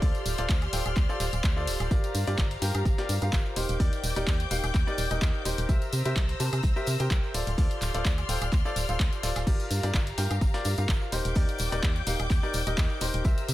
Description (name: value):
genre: piano house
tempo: 127 BPM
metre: 4/4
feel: swing 54% on 16ths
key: unclear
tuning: A4 = 440 Hz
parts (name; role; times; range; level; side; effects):
- rich studio string section; sustained chords; 0.0-13.5 s; G4 to G6; -36 LUFS; left 3 dB; vintage 12-bit sampler grit, sidechain pumping
- clear upright piano; riff; 0.0-13.5 s; Eb4 to A5; -34 LUFS; left 1 dB; sidechain pumping, tape echo
- organ-like FM bass; bass; 0.0-13.5 s; D1 to C3; -30 LUFS; equal; sidechain pumping
- dusty soul sampler-style drum kit; drums; 0.0-13.5 s; hi-hat, snare drum, tambourine; -45 LUFS; right 1 dB; none
- electronic kick drum; drums; 0.0-13.4 s; none; -26 LUFS; equal; none
- house drum kit; drums; 0.0-13.5 s; crash cymbal, handclaps, hi-hat, tambourine, woodblock; -35 LUFS; equal; tape echo
- tambourine; percussion; 0.0-13.5 s; none; -45 LUFS; left 3 dB; none
- airy breathy pad; texture; 0.0-13.5 s; G4 to F5; -41 LUFS; right 4 dB; chorus, sidechain pumping
room: digital ambience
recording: echo-heavy mix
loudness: -25 LUFS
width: side -15 dB against mid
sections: 0.0-13.5 A section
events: none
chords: 0.0 Dm7; 1.9 Gm7; 3.6 Ebmaj7; 5.7 C7; 7.3 Dm7; 9.5 Gm7; 11.1 Ebmaj7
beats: | 0.02 0.49 0.97 1.44 | 1.91 2.38 2.86 3.33 | 3.80 4.27 4.75 5.22 | 5.69 6.16 6.63 7.11 | 7.58 8.05 8.53 9.00 | 9.47 9.94 10.41 10.89 | 11.36 11.83 12.30 12.78 | 13.25